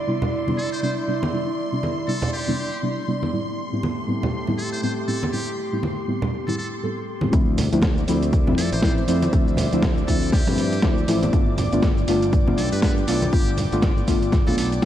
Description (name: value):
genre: deep house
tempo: 120 BPM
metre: 4/4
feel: swing 58% on 16ths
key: D dorian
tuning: A4 = 439 Hz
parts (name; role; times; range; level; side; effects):
- airy breathy pad; sustained chords; 0.0-14.9 s; A3 to D6; -30 LUFS; right 1 dB; chorus, sidechain pumping
- string machine, violins; texture; 0.0-7.3 s; C6; -36 LUFS; equal; ensemble chorus, sidechain pumping
- deep mellow chord stab; stabs; 0.1-14.9 s; A2 to A4; -24 LUFS; left 1 dB; chorus, sidechain pumping, diffuse ambient delay
- congas; percussion; 0.2-14.6 s; none; -28 LUFS; right 1 dB; none
- trumpet with metal mute; melody; 0.6-14.7 s; G4 to C5; -33 LUFS; equal; analog delay
- modern bright fingered electric bass; bass; 7.3-14.9 s; G1 to G2; -25 LUFS; equal; tube saturation, sidechain pumping
- dusty soul sampler-style drum kit; drums; 7.3-14.9 s; hi-hat, shaker, snare drum; -28 LUFS; equal; overdrive, small room ambience
- electronic kick drum; drums; 7.3-14.9 s; none; -20 LUFS; equal; small room ambience
room: moderate lush hall reverb, RT60 2.0 s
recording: dreamy mix soaked in reverb, cassette tape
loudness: -19 LUFS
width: side -11 dB against mid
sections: 0.0-7.3 A section; 7.3-14.9 B section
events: drop 7.3-14.9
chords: 0.0 Cmaj9; 3.3 Am9; 7.3 Dm9; 11.3 G7